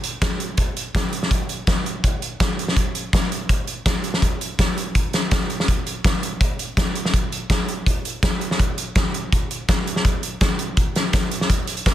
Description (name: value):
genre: rock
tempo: 165 BPM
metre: 4/4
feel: straight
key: none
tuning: none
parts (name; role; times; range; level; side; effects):
- loose indie drum kit; drums; 0.0-11.9 s; hi-hat, kick drum, snare drum; -19 LUFS; equal; none
room: light reverb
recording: dense, heavily limited modern master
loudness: -19 LUFS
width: side -12 dB against mid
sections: 0.0-11.5 A section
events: none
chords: none